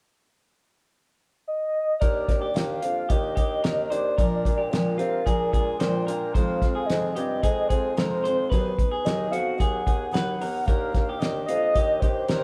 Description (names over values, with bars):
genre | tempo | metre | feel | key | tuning
jangly indie pop | 111 BPM | 4/4 | straight | Eb major | A4 = 440 Hz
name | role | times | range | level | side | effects
warm velvety synth lead | melody | 1.5-12.4 s | Bb4 to G5 | -30 LUFS | equal | chorus, tape echo
picked steel-string acoustic guitar | accompaniment | 2.0-12.4 s | F2 to G#4 | -35 LUFS | equal | none
electric guitar through a small old amp | arpeggios | 2.0-12.4 s | F4 to C5 | -35 LUFS | equal | none
mellow bassoon | bass | 2.0-12.4 s | Eb2 to C3 | -32 LUFS | equal | none
cloth-damped thuddy drum kit | drums | 2.0-12.4 s | hi-hat, kick drum, snare drum | -28 LUFS | equal | none
room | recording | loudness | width
light reverb | band playing live in one room | -25 LUFS | mono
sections
0.0-2.0 A section; 2.0-12.4 B section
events
none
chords
0.0 N.C.; 2.0 Ebmaj7; 4.2 Bb7; 6.3 Fm7; 8.5 B6/D#; 10.7 Ebmaj7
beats
0.40 0.94 1.48 | 2.02 2.56 3.10 3.64 | 4.18 4.72 5.27 5.81 | 6.35 6.89 7.43 7.97 | 8.51 9.05 9.59 10.13 | 10.67 11.21 11.75 12.29